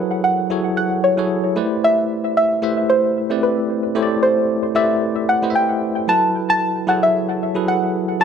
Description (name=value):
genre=amapiano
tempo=113 BPM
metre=4/4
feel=swing 55% on 16ths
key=unclear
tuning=A4 = 440 Hz
part: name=soft round pluck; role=melody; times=0.0-8.2 s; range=B4 to A5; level=-18 LUFS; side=equal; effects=chorus, analog delay
part: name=bell-like tine electric piano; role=accompaniment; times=0.0-8.2 s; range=F#3 to E5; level=-20 LUFS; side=equal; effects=fast stereo tremolo
room=moderate echo chamber reverb, RT60 1.7 s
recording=echo-heavy mix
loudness=-16 LUFS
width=side -7 dB against mid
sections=0.0-8.2 A section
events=none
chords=0.0 F#m11; 1.6 Am11; 6.1 F#m11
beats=0.24 0.77 1.30 | 1.83 2.36 2.89 3.42 | 3.96 4.49 5.02 5.55 | 6.08 6.61 7.14 7.67 | 8.20